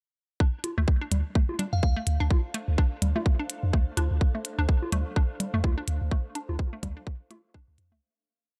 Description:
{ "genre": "minimal techno", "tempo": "126 BPM", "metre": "4/4", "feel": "swing 58% on 16ths", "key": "D minor", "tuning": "A4 = 442 Hz", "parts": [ { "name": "hollow square pluck", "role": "riff", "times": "0.4-7.9 s", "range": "A3 to D4", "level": "-38 LUFS", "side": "equal", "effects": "chorus, phaser, sidechain pumping, dub echo" }, { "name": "electronic kick drum", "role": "drums", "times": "0.4-7.7 s", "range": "none", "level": "-26 LUFS", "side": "equal", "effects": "overdrive" }, { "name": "granular cloud pad", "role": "texture", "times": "2.0-8.0 s", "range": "D4 to F5", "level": "-46 LUFS", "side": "equal", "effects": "built-in reverb, sidechain pumping" }, { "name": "electronic hi-hat", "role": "drums", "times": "0.6-7.9 s", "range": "none", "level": "-35 LUFS", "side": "equal", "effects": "overdrive" }, { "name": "congas", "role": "percussion", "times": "0.6-7.4 s", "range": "none", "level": "-36 LUFS", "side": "equal", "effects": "overdrive, dub echo" }, { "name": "punchy sub bass", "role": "bass", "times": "0.8-8.0 s", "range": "C2 to F2", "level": "-29 LUFS", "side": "equal", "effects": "sidechain pumping" }, { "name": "glassy synth bell", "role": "melody", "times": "1.7-1.9 s", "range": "F5", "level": "-40 LUFS", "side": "equal", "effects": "chorus, dub echo" } ], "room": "little or no reverb", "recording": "dark, warm production", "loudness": "-27 LUFS", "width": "mono", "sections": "0.4-8.0 groove", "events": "fade-in on ambient pad 0.4-8.0; fade-out 5.5-8.0", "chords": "0.4 Dm7", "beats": "| 0.40 0.88 1.35 1.83 | 2.31 2.78 3.26 3.73 | 4.21 4.69 5.16 5.64 | 6.12 6.59 7.07 7.54" }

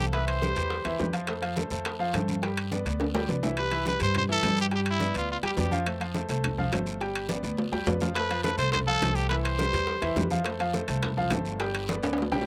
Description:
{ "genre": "latin, salsa", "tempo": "209 BPM", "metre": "4/4", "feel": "straight", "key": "C major", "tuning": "A4 = 440 Hz", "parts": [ { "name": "growling trumpet", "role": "melody", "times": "0.0-1.1, 3.6-5.8, 8.2-10.3 s", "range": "E4 to C5", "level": "-31 LUFS", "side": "equal", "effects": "none" }, { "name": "bright grand piano", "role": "accompaniment", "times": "0.0-12.4 s", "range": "E3 to G5", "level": "-34 LUFS", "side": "equal", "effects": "none" }, { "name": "upright bass", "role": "bass", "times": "0.0-12.4 s", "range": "G1 to G2", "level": "-34 LUFS", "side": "equal", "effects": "none" }, { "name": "bongos", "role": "percussion", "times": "0.1-3.5, 8.2-12.4 s", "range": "none", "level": "-39 LUFS", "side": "equal", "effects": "none" }, { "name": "congas", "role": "percussion", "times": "0.1-12.5 s", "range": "none", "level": "-38 LUFS", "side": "equal", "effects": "none" }, { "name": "guiro", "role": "percussion", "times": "0.1-12.5 s", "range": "none", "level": "-44 LUFS", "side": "equal", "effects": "none" }, { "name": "timbales", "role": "percussion", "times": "0.1-12.5 s", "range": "none", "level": "-35 LUFS", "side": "equal", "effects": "none" } ], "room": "little or no reverb", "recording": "recorded outdoors, with no room sound", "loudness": "-28 LUFS", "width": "mono", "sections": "0.0-3.6 A section; 3.6-12.5 A section", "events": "drum fill 3.0-3.6, 7.3-8.2, 11.9-12.5", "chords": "0.1 Cmaj7; 1.3 F; 2.4 G; 3.6 Cmaj7; 4.7 G7; 5.9 F; 7.0 G7; 8.2 F; 9.3 Cmaj7; 10.4 F; 11.6 G", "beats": "| 0.14 0.42 0.71 0.99 | 1.28 1.57 1.85 2.14 | 2.43 2.71 3.00 3.28 | 3.57 3.86 4.14 4.43 | 4.72 5.00 5.29 5.58 | 5.86 6.15 6.43 6.72 | 7.01 7.29 7.58 7.87 | 8.15 8.44 8.73 9.01 | 9.30 9.59 9.88 10.16 | 10.45 10.74 11.02 11.31 | 11.60 11.88 12.17 12.46" }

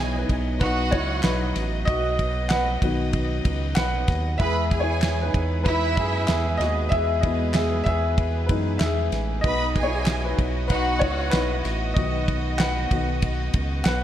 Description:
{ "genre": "piano-driven pop", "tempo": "95 BPM", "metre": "4/4", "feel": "straight", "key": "unclear", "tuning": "A4 = 440 Hz", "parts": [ { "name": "warm studio violin section", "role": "second line", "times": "0.0-11.6 s", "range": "E4 to B5", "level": "-28 LUFS", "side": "right 1 dB", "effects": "none" }, { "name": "dark baby grand piano", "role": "accompaniment", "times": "0.0-14.0 s", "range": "B2 to F#5", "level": "-26 LUFS", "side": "left 1 dB", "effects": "lush chorus" }, { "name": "dark studio string section", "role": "sustained chords", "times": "0.0-14.0 s", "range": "F#3 to D#5", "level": "-32 LUFS", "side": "right 1 dB", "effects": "none" }, { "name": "round analog bass", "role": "bass", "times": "0.0-14.0 s", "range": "A1 to F#2", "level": "-26 LUFS", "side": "right 1 dB", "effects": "none" }, { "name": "damped 70s drum kit", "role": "drums", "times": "0.3-14.0 s", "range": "handclaps, kick drum, ride cymbal, snare drum", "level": "-26 LUFS", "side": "right 1 dB", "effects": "gated reverb" } ], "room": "moderate plate reverb, RT60 1.7 s, small room ambience", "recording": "bright 1980s-style digital production", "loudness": "-21 LUFS", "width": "side -11 dB against mid", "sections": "0.0-14.0 A section", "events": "grand piano solo 0.0-14.0", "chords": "0.0 B; 4.4 E; 9.4 B", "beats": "0.61 1.25 | 1.88 2.51 3.14 3.77 | 4.40 5.03 5.66 6.29 | 6.92 7.55 8.18 8.81 | 9.44 10.07 10.71 11.34 | 11.97 12.60 13.23 13.86" }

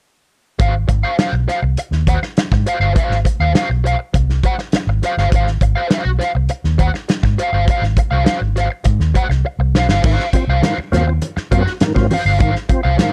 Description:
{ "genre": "funk", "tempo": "102 BPM", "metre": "4/4", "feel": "straight", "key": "Ab mixolydian", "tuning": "A4 = 440 Hz", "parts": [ { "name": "crunchy overdriven guitar", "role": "accompaniment", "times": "0.6-13.1 s", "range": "Gb4 to Gb5", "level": "-22 LUFS", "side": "equal", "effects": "wah" }, { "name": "vintage muted fingered electric bass", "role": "bass", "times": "0.6-13.0 s", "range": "G1 to Ab2", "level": "-19 LUFS", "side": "equal", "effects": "none" }, { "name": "warm soul drum kit", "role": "drums", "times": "0.6-13.1 s", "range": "crash cymbal, hi-hat, kick drum, snare drum", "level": "-20 LUFS", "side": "equal", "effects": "none" }, { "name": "percussive tonewheel organ", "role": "stabs", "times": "10.0-13.1 s", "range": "Ab2 to F4", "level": "-24 LUFS", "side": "equal", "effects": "overdrive, chorus vibrato, slow rotary speaker" }, { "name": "congas", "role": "percussion", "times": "10.3-13.1 s", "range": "none", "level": "-26 LUFS", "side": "equal", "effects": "none" } ], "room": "light reverb", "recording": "dark, warm production", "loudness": "-16 LUFS", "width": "mono", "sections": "0.6-10.0 A section; 10.0-13.1 B section", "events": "drum fill 9.4-10.0", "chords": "0.6 Ab6; 10.0 Ab13", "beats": "| 0.59 1.18 1.77 2.36 | 2.95 3.54 4.13 4.72 | 5.31 5.90 6.49 7.08 | 7.67 8.27 8.86 9.45 | 10.04 10.63 11.22 11.81 | 12.40 12.99" }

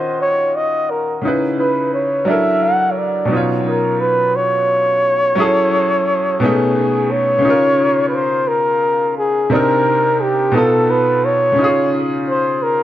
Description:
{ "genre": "R&B", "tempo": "58 BPM (dotted quarters)", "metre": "6/8", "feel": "straight", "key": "Db major", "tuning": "A4 = 443 Hz", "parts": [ { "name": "breathy flugelhorn", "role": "melody", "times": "0.0-12.8 s", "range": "G4 to Gb5", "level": "-15 LUFS", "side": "equal", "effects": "analog delay" }, { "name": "bright concert grand piano", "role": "accompaniment", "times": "0.0-12.8 s", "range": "Cb3 to Eb5", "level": "-18 LUFS", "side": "equal", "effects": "analog delay" } ], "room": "moderate spring reverb, RT60 1.2 s", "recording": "echo-heavy mix", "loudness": "-13 LUFS", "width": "side -13 dB against mid", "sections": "0.0-7.4 A section; 7.4-12.8 B section", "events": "none", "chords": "0.0 Ebm7; 1.2 Dbm9; 2.3 Gb7alt; 3.3 Cbadd9; 5.4 Gbm7; 6.4 Cb9; 7.4 Db69; 9.5 Cm7; 10.5 Cb7#11; 11.6 Db", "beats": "0.20 | 1.23 2.26 | 3.30 4.33 | 5.37 6.40 | 7.44 8.47 | 9.51 10.54 | 11.57 12.61" }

